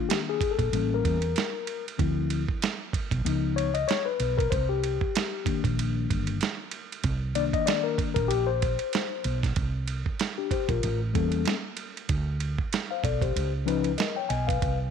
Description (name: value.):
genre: hip hop, jazz-hop.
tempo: 95 BPM.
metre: 4/4.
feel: swing 58% on 16ths.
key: unclear.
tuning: A4 = 440 Hz.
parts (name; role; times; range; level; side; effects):
mellow tine electric piano; accompaniment; 0.0-14.8 s; Eb3 to Ab5; -28 LUFS; left 11 dB; none.
dusty soul sampler-style drum kit; drums; 0.1-14.8 s; hi-hat, kick drum, ride cymbal, snare drum; -30 LUFS; right 5 dB; none.
woody fretless electric bass; bass; 0.6-14.9 s; G1 to E2; -28 LUFS; right 2 dB; none.
room: light reverb.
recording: 1960s-style stereo.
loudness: -25 LUFS.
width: side -7 dB against mid.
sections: 0.0-9.6 A section; 9.6-14.9 B section.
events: tine electric piano solo 0.0-9.6.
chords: 0.0 Cm9 (rootless); 0.7 A7b9; 2.0 Dm7; 3.3 Db9; 4.5 Cm9; 9.6 Bbsus2; 10.8 A7b9; 12.1 Bm7; 13.4 Db9.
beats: 0.09 0.73 1.36 | 1.99 2.62 3.25 3.88 | 4.51 5.15 5.78 6.41 | 7.04 7.67 8.30 8.94 | 9.57 10.20 10.83 11.46 | 12.09 12.73 13.36 13.99 | 14.62.